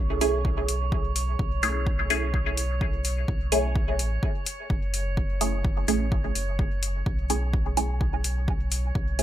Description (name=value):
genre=dub techno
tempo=127 BPM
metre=4/4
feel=swing 55% on 16ths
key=F# minor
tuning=A4 = 442 Hz
part: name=filtered dub chord stab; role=stabs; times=0.0-9.2 s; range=A3 to G#4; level=-28 LUFS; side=right 2 dB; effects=phaser, sidechain pumping, dub echo
part: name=pure sine sub bass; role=bass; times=0.0-9.2 s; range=F#1 to B1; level=-28 LUFS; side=equal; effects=sidechain pumping
part: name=drifting glass-harmonics texture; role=texture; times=0.0-9.2 s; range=C#5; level=-36 LUFS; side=right 4 dB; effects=chorus, built-in reverb, sidechain pumping
part: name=electronic hi-hat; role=drums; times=0.2-9.2 s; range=none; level=-30 LUFS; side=left 3 dB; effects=overdrive
part: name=electronic kick drum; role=drums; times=0.4-9.1 s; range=none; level=-27 LUFS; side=equal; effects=overdrive
room=light reverb, digital ambience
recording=none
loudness=-24 LUFS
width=side -12 dB against mid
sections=0.0-9.2 A section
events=filter sweep on synth stab 0.0-9.2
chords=0.0 F#m7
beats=0.45 | 0.92 1.39 1.87 2.34 | 2.81 3.28 3.76 4.23 | 4.70 5.17 5.65 6.12 | 6.59 7.06 7.54 8.01 | 8.48 8.95